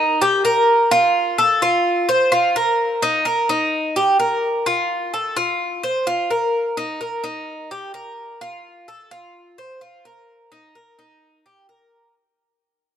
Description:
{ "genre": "latin", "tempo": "128 BPM", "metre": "4/4", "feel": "straight", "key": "unclear", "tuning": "A4 = 440 Hz", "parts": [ { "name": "Cuban tres", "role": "solo", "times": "0.0-12.1 s", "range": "Eb4 to C5", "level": "-17 LUFS", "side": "equal", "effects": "none" } ], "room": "moderate plate reverb, RT60 3.4 s", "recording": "none", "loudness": "-16 LUFS", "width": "side -9 dB against mid", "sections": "0.0-12.2 A section", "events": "fade-out 0.0-12.2", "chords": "none", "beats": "0.44 | 0.91 1.38 1.85 2.32 | 2.79 3.26 3.73 4.19 | 4.66 5.13 5.60 6.07 | 6.54 7.00 7.47 7.94 | 8.41 8.88 9.35 9.81 | 10.28 10.75 11.22 11.68" }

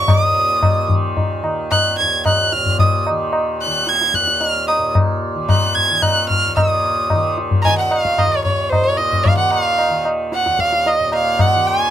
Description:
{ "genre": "indian classical, Hindustani", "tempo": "112 BPM", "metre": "3/4", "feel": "straight", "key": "Eb raga kafi", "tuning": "A4 = 440 Hz", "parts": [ { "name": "clear violin", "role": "melody", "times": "0.0-11.9 s", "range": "C5 to Ab6", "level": "-16 LUFS", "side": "right 1 dB", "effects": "none" }, { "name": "tanpura", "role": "drone", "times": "0.0-11.9 s", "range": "Eb2 to Eb3", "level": "-24 LUFS", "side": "equal", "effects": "none" }, { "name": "tabla", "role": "percussion", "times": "0.1-11.6 s", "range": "none", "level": "-18 LUFS", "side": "left 1 dB", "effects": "none" } ], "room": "light reverb", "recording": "close, detailed microphones", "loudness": "-14 LUFS", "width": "side -10 dB against mid", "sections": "0.0-6.6 A section; 6.6-11.9 B section", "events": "none", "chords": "none", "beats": "| 0.08 0.63 1.17 | 1.71 2.25 2.79 | 3.33 3.88 4.41 | 4.95 5.49 6.03 | 6.57 7.11 7.64 | 8.18 8.71 9.25 | 9.78 10.32 10.85 | 11.38" }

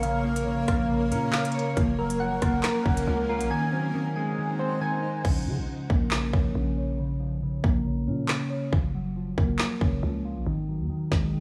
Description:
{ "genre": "hip hop, drill", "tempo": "138 BPM", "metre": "4/4", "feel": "half-time", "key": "Bb minor", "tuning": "A4 = 440 Hz", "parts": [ { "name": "mellow electric guitar", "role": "accompaniment", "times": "0.0-11.4 s", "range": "Db3 to Db5", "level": "-32 LUFS", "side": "equal", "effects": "subtle chorus, low-pass filter" }, { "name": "granular cloud pad", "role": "sustained chords", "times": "0.0-5.2 s", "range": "Ab3 to Gb5", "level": "-38 LUFS", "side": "equal", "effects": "built-in reverb" }, { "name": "soft electric-piano-like synth keys", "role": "arpeggios", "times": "0.0-5.2 s", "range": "Bb3 to Ab5", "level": "-31 LUFS", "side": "equal", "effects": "chorus, phaser, low-pass filter, digital delay" }, { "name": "growling 808-style bass", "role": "bass", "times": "0.0-11.4 s", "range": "Gb1 to Db3", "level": "-32 LUFS", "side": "equal", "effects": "none" }, { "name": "drill drum kit", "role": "drums", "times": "0.0-11.2 s", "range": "crash cymbal, handclaps, hi-hat, kick drum, rim click, snare drum", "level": "-28 LUFS", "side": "equal", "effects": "none" } ], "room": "light reverb", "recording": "studio ambience", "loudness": "-27 LUFS", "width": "mono", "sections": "0.0-5.2 A section; 5.2-11.4 B section", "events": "drums muted 3.5-5.2; hi-hats muted 5.2-11.4", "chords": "0.0 Bbm; 1.8 Gbmaj7; 3.5 Ab7; 5.2 Bbm; 8.7 Gbmaj7; 10.5 Ab7(no3)", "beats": "| 0.03 0.47 0.90 1.33 | 1.77 2.20 2.64 3.07 | 3.51 3.94 4.38 4.81 | 5.25 5.68 6.12 6.55 | 6.99 7.42 7.86 8.29 | 8.73 9.16 9.60 10.03 | 10.46 10.90 11.34" }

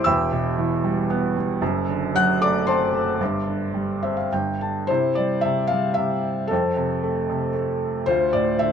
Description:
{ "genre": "classical, lyrical solo piano", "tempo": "114 BPM", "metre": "3/4", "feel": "rubato", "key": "C major", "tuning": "A4 = 441 Hz", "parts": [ { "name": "felt-muted upright piano", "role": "solo", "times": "0.0-8.7 s", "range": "E1 to F#6", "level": "-20 LUFS", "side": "equal", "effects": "none" } ], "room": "light reverb", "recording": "close, detailed microphones", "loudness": "-20 LUFS", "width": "side -7 dB against mid", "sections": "0.0-4.9 A section; 4.9-8.7 B section", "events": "felt piano fill 3.7-4.9", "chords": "0.1 Em; 1.6 D7/F#; 3.2 Gsus4; 4.3 Gsus2; 4.9 C; 6.5 F; 8.1 Dm", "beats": "| 0.05 0.57 1.09 | 1.61 2.14 2.67 | 3.20 3.74 4.31 | 4.90 5.45 5.99 | 6.51 7.04 7.56 | 8.07 8.61" }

